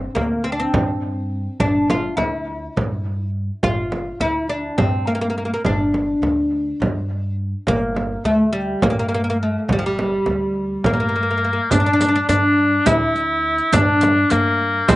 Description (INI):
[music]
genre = Turkish makam ensemble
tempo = 208 BPM (eighths)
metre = 7/8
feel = straight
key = G makam huseyni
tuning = A4 = 440 Hz
[part]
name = oud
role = melody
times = 0.0-14.9 s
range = F3 to F4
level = -20 LUFS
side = equal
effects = none
[part]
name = upright bass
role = bass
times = 0.0-15.0 s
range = G1 to G2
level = -25 LUFS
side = equal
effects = none
[part]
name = frame drum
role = percussion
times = 0.2-15.0 s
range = none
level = -21 LUFS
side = right 1 dB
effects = none
[part]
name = warm cor anglais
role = second line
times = 10.8-15.0 s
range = Bb3 to E4-30c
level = -19 LUFS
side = left 1 dB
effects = slapback echo
[part]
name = riq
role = percussion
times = 11.7-15.0 s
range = none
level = -26 LUFS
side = right 5 dB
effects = none
[sound]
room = little or no reverb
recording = recorded outdoors, with no room sound, nothing above 10.3 kHz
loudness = -17 LUFS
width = side -17 dB against mid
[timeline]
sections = 0.0-11.7 A section; 11.7-15.0 B section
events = none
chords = none